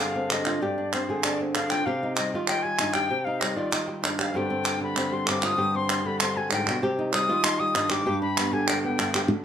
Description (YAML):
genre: flamenco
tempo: 194 BPM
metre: 4/4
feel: straight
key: G phrygian dominant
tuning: A4 = 440 Hz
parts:
  - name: flamenco guitar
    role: melody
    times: 0.0-9.4 s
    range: G2 to Ab4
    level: -27 LUFS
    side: equal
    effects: none
  - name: bright reedy silver concert flute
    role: second line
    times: 0.0-9.3 s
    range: C5 to Eb6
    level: -28 LUFS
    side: left 3 dB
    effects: none
  - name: palmas hand claps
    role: percussion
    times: 0.3-9.3 s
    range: none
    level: -27 LUFS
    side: right 2 dB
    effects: none
room: moderate studio reverb, RT60 0.5 s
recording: minimal, uncompressed stereo recording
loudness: -23 LUFS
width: side -8 dB against mid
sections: 0.0-9.3 A section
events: flute solo 0.0-9.3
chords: 0.0 Gsus4; 1.9 Cm; 4.3 Gsus4; 6.8 Cm; 8.1 G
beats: 0.30 | 0.61 0.93 1.24 1.55 | 1.86 2.17 2.48 2.79 | 3.10 3.41 3.73 4.04 | 4.35 4.66 4.97 5.28 | 5.58 5.89 6.20 6.51 | 6.82 7.13 7.44 7.75 | 8.06 8.37 8.68 8.98 | 9.29